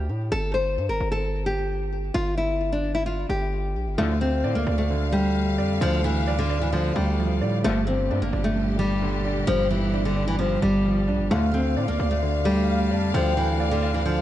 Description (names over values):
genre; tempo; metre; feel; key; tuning
hip hop; 131 BPM; 4/4; half-time; D minor; A4 = 440 Hz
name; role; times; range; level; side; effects
nylon-string guitar; melody; 0.0-14.2 s; D3 to C5; -25 LUFS; left 1 dB; ping-pong delay
distorted 808-style bass; bass; 0.0-14.2 s; G1 to A2; -26 LUFS; equal; distortion
dark concert grand piano; accompaniment; 4.0-14.2 s; G2 to D5; -27 LUFS; right 4 dB; none
warm symphonic string section; sustained chords; 4.0-14.2 s; Bb2 to F5; -32 LUFS; left 2 dB; none
mellow brass ensemble; stabs; 4.0-4.1, 7.6-7.8, 11.3-11.5 s; A2 to F3; -35 LUFS; left 5 dB; ping-pong delay
warm velvety synth lead; second line; 11.3-14.2 s; D5 to A5; -31 LUFS; left 2 dB; chorus, ping-pong delay
room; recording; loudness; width
light reverb, studio reverb; dark, warm production, nothing above 10.3 kHz; -21 LUFS; side -12 dB against mid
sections
0.0-4.0 A section; 4.0-14.2 B section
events
none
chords
0.3 N.C.; 4.0 Dm; 7.6 Gm7; 11.3 Dm